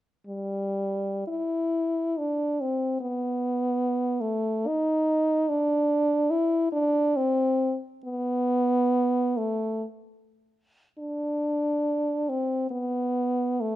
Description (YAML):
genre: classical, free, expressive piece for unaccompanied French horn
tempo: 42-81 BPM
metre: 3/4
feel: rubato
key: unclear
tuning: A4 = 440 Hz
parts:
  - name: warm French horn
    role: solo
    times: 0.3-13.8 s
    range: G3 to E4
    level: -24 LUFS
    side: equal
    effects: none
room: light reverb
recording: close, detailed microphones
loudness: -24 LUFS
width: side -14 dB against mid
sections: 0.2-11.0 A section; 11.0-13.8 B section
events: none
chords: none